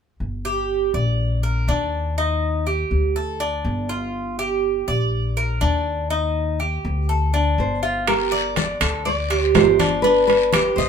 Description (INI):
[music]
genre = latin, Cuban son and guajira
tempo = 122 BPM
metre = 4/4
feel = straight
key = G minor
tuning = A4 = 439 Hz
[part]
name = upright bass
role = bass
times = 0.2-10.9 s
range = G1 to Eb2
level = -24 LUFS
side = left 1 dB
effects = none
[part]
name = Cuban tres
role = arpeggios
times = 0.5-10.9 s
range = D4 to Eb5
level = -22 LUFS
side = right 2 dB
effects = none
[part]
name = nylon-string guitar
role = melody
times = 7.6-10.9 s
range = Bb4 to D5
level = -20 LUFS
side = left 2 dB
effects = none
[part]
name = congas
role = percussion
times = 8.1-10.9 s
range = none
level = -27 LUFS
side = left 6 dB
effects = none
[part]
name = guiro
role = percussion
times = 8.1-10.9 s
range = none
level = -30 LUFS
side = left 8 dB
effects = none
[part]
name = timbales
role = percussion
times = 8.1-10.8 s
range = none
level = -23 LUFS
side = right 5 dB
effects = none
[sound]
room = moderate studio reverb, RT60 0.5 s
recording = minimal, uncompressed stereo recording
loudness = -18 LUFS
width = side -7 dB against mid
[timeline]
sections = 0.2-8.1 A section; 8.1-10.9 B section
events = none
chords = 0.2 Gm; 1.2 Bb; 2.2 Eb; 3.2 D5; 4.1 Gm7; 5.1 Bb; 6.1 Eb; 7.1 D5; 8.1 Gm; 9.1 Dsus4; 10.0 G